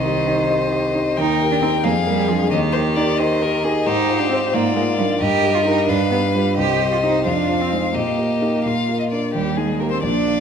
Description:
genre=quick classical-period movement for piano quartet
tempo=88 BPM (dotted quarters)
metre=6/8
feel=straight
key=Eb major from 3.9 s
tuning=A4 = 440 Hz
part: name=warm violin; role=melody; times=0.0-10.4 s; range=G4 to G5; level=-22 LUFS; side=left 6 dB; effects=none
part: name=clear cello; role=second line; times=0.0-10.4 s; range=Eb3 to G4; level=-22 LUFS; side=right 7 dB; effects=none
part: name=rich violin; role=second line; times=0.0-10.0 s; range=F4 to C5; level=-26 LUFS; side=left 3 dB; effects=none
part: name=warm grand piano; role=accompaniment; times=0.0-10.4 s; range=Bb1 to Eb5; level=-20 LUFS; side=equal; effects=none
room=wet scoring stage reverb, RT60 1.5 s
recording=none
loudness=-16 LUFS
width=side -7 dB against mid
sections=0.0-9.4 A section; 9.4-10.4 B section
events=none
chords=0.0 Cm; 1.2 Eb; 1.8 Bb7/F; 2.5 Eb; 3.9 Fm7/Ab; 4.5 Bb7/Ab; 5.2 Eb/G; 5.9 G7; 6.6 Cm; 7.3 F5; 8.0 Eb/Bb; 8.7 Bb; 9.4 Eb

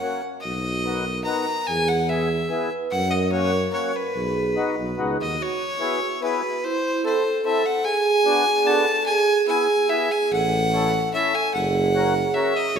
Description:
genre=alpine folk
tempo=146 BPM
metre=3/4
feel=straight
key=B major, E major from 5.4 s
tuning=A4 = 440 Hz
part: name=rich fiddle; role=melody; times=0.0-12.8 s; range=B4 to A#5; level=-24 LUFS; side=left 1 dB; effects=none
part: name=mellow accordion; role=accompaniment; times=0.0-12.5 s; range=A#3 to A#4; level=-28 LUFS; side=left 4 dB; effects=none
part: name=vibraphone with soft mallets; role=second line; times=0.4-12.8 s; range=E4 to B4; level=-24 LUFS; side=right 4 dB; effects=none
part: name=mellow tuba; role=bass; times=0.4-5.4, 10.3-12.8 s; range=F#1 to F#2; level=-27 LUFS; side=equal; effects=none
room=wet concert hall reverb, RT60 1.8 s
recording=minimal, uncompressed stereo recording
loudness=-20 LUFS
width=side -7 dB against mid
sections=0.0-5.4 A section; 5.4-12.8 B section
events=none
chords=0.4 B; 1.7 E; 2.9 F#; 4.1 B; 5.4 E; 6.6 Am; 7.8 Bm; 9.1 E; 10.3 A; 11.5 F#

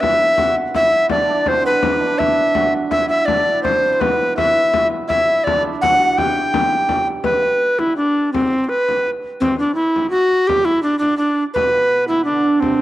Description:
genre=medieval dance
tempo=166 BPM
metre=3/4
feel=straight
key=unclear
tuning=A4 = 437 Hz
part: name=bright reedy tenor recorder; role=melody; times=0.0-12.8 s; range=C4 to G5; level=-15 LUFS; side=equal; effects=cassette tape
part: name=hammered dulcimer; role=second line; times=0.0-9.3, 11.6-12.8 s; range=B2 to G4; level=-24 LUFS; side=right 5 dB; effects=none
part: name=frame drum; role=percussion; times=0.0-12.8 s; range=none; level=-25 LUFS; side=left 7 dB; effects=none
room=moderate spring reverb, RT60 2.5 s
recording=home recording on cassette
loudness=-14 LUFS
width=side -14 dB against mid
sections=0.0-7.3 A section; 7.3-12.8 B section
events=none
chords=none

